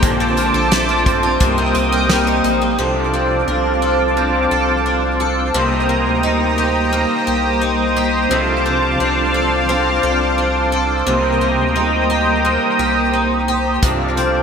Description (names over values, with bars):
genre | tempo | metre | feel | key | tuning
dream pop | 87 BPM | 4/4 | straight | unclear | A4 = 440 Hz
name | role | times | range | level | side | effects
electric guitar at the edge of break-up | accompaniment | 0.0-14.4 s | Bb2 to Bb4 | -21 LUFS | right 1 dB | harmonic tremolo, analog chorus
warm analog pad | sustained chords | 0.0-14.4 s | C5 to Eb6 | -18 LUFS | equal | chorus
picked twelve-string acoustic guitar | arpeggios | 0.0-14.4 s | Bb2 to Bb4 | -20 LUFS | left 1 dB | lush chorus, digital delay
round analog bass | bass | 0.0-14.4 s | Bb1 to D2 | -23 LUFS | equal | none
loose indie drum kit | drums | 0.0-2.6, 13.8-14.3 s | hi-hat, kick drum, snare drum | -19 LUFS | equal | gated reverb
room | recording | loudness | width
wet lush hall reverb, RT60 2.5 s | bright 1980s-style digital production | -14 LUFS | side -6 dB against mid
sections
0.0-2.8 A section; 2.8-14.4 B section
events
none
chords
0.0 Bbmaj9; 1.4 Cm7; 2.8 F6/C; 5.5 Cm7; 8.3 F6/C; 11.1 Cm7; 13.8 F6/C